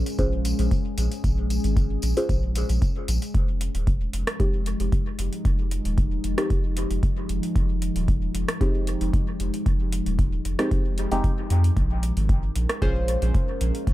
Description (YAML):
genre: dub techno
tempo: 114 BPM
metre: 4/4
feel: straight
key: F minor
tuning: A4 = 440 Hz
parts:
  - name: deep dark ambient pad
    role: sustained chords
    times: 0.0-13.9 s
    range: F3 to Bb4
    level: -31 LUFS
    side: left 2 dB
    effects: chorus, built-in reverb, sidechain pumping
  - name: soft dub sub bass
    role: bass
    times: 0.0-13.9 s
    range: Eb1 to F2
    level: -25 LUFS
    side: equal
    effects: sidechain pumping
  - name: booming analog drum machine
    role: drums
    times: 0.1-13.9 s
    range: hi-hat, rim click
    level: -33 LUFS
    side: right 1 dB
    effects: dub echo
  - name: tambourine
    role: percussion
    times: 0.1-3.3 s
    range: none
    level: -38 LUFS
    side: left 2 dB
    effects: none
  - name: deep mellow chord stab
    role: stabs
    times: 0.2-13.9 s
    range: Ab3 to C5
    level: -30 LUFS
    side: equal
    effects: chorus, phaser, sidechain pumping, dub echo
  - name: electronic kick drum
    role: drums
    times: 0.2-13.9 s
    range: none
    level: -23 LUFS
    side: equal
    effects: none
room: little or no reverb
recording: echo-heavy mix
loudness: -22 LUFS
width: side -16 dB against mid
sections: 0.0-3.3 A section; 3.3-13.9 A section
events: filter sweep on synth stab 0.0-3.3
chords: 0.0 Bbm7; 3.3 Fm7; 11.8 Bbm7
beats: 0.19 0.71 | 1.24 1.77 2.29 2.82 | 3.35 3.87 4.40 4.92 | 5.45 5.98 6.50 7.03 | 7.56 8.08 8.61 9.13 | 9.66 10.19 10.71 11.24 | 11.77 12.29 12.82 13.35 | 13.87